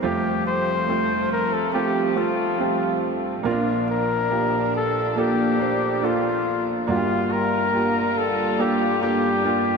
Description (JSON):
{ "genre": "pop ballad", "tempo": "70 BPM", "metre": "4/4", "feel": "straight", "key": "Bb major", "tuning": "A4 = 440 Hz", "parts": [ { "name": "clear flugelhorn", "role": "melody", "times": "0.0-9.8 s", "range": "F4 to C5", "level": "-23 LUFS", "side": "left 3 dB", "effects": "ping-pong delay" }, { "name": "warm grand piano", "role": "accompaniment", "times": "0.0-9.8 s", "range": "F1 to C5", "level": "-24 LUFS", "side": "right 4 dB", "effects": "none" }, { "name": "warm studio string section", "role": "sustained chords", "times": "0.0-9.8 s", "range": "F2 to F4", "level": "-27 LUFS", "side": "left 2 dB", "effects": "none" } ], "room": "wet lush hall reverb, RT60 2.7 s", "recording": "dreamy mix soaked in reverb", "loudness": "-20 LUFS", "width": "side -4 dB against mid", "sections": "0.0-9.8 A section", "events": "none", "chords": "0.0 Fadd9; 3.5 Bbmaj7; 6.9 Gm7" }